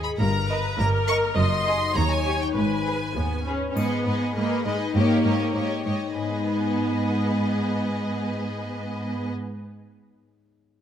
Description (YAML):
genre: cinematic, playful, whimsical film cue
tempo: 101 BPM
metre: 2/4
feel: straight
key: G# minor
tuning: A4 = 440 Hz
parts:
  - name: clear studio violin section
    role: melody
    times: 0.0-9.3 s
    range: D#5 to C#6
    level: -32 LUFS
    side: left 1 dB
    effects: none
  - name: rich studio viola section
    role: accompaniment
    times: 0.0-9.3 s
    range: G#3 to D#5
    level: -27 LUFS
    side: right 1 dB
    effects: none
  - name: concert harp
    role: arpeggios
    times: 0.0-10.1 s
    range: F#2 to D#5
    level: -30 LUFS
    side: left 7 dB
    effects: none
  - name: clear studio cello section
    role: bass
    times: 0.0-9.3 s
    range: D#2 to G#2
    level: -28 LUFS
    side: right 1 dB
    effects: none
  - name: clear studio double bass section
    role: bass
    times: 0.0-3.6 s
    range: F#1 to D#2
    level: -28 LUFS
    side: right 2 dB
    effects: none
  - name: rich studio violin section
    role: second line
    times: 0.5-9.3 s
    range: G4 to D#5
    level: -33 LUFS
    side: left 2 dB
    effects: none
  - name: triangle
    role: percussion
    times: 3.8-4.9 s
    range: none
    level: -45 LUFS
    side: left 3 dB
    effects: none
room: moderate scoring stage reverb, RT60 1.9 s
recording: close, detailed microphones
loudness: -22 LUFS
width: side -9 dB against mid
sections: 0.0-3.8 A section; 3.8-6.1 B section; 6.1-8.5 C section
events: none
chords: 0.2 D#/G; 1.4 G#7/F# (rootless); 2.0 D#7; 2.6 G#m; 4.9 D#7/G#; 6.1 G#m